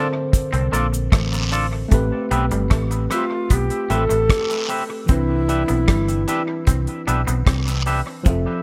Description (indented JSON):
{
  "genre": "lovers rock reggae",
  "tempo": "76 BPM",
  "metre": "4/4",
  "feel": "straight",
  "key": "C major",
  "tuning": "A4 = 440 Hz",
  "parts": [
    { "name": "tine electric piano", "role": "accompaniment", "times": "0.0-8.6 s", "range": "D3 to E5", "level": "-29 LUFS", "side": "equal", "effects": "tape echo" },
    { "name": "twangy electric guitar", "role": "stabs", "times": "0.0-8.0 s", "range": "C4 to E5", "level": "-29 LUFS", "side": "equal", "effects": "tape echo" },
    { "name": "damped 70s drum kit", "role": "drums", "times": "0.3-8.4 s", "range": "hi-hat, kick drum, rim click", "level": "-22 LUFS", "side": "equal", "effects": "gated reverb" },
    { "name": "cabasa and guiro", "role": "percussion", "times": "0.3-8.4 s", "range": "none", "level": "-33 LUFS", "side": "equal", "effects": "none" },
    { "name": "twangy electric guitar", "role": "riff", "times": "0.5-8.4 s", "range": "F3 to C4", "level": "-33 LUFS", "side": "equal", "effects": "tube saturation, tape echo" },
    { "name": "vintage muted fingered electric bass", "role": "bass", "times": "0.5-8.4 s", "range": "F1 to C2", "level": "-24 LUFS", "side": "equal", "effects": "none" },
    { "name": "breathy mellow tenor recorder", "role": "melody", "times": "3.1-6.6 s", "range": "E4 to A4", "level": "-25 LUFS", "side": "equal", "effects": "tape echo" }
  ],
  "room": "light reverb, studio reverb",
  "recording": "none",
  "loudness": "-20 LUFS",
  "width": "mono",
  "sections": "0.0-1.9 A section; 1.9-8.6 B section",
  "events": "tine electric piano solo 0.0-1.9",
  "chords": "0.0 Bbmaj7; 1.9 Am9; 5.1 Cmaj9"
}